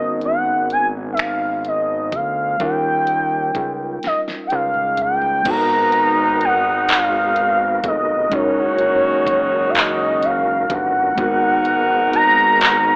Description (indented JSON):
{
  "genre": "slow six-eight R&B",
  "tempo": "42 BPM (dotted quarters)",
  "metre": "6/8",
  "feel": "straight",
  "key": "G# dorian",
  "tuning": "A4 = 439 Hz",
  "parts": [
    { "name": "gliding portamento lead", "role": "melody", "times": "0.0-13.0 s", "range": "C#5 to A#5", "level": "-20 LUFS", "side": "equal", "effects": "chorus" },
    { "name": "tine electric piano", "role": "accompaniment", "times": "0.0-13.0 s", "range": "G3 to A#4", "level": "-28 LUFS", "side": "equal", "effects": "none" },
    { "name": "fat analog bass", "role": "bass", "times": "0.0-13.0 s", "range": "E#1 to D#2", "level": "-29 LUFS", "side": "equal", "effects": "none" },
    { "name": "smooth R&B drum kit", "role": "drums", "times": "0.2-12.8 s", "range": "crash cymbal, finger snaps, handclaps, hi-hat, kick drum, snare drum, toms", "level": "-24 LUFS", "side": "equal", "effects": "none" },
    { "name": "tonewheel organ", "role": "sustained chords", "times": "5.5-13.0 s", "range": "D#3 to A#4", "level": "-30 LUFS", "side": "equal", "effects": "none" },
    { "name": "warm horn section", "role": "stabs", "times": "5.5-13.0 s", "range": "D#3 to A#4", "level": "-27 LUFS", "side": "equal", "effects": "none" }
  ],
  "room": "light reverb",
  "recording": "AM radio sound",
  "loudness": "-18 LUFS",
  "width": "mono",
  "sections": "0.0-5.5 A section; 5.5-13.0 B section",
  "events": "drum fill 4.0-5.5",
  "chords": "0.0 G#m11; 2.6 D#9; 5.5 G#m9; 8.3 F#6; 11.2 G#m9"
}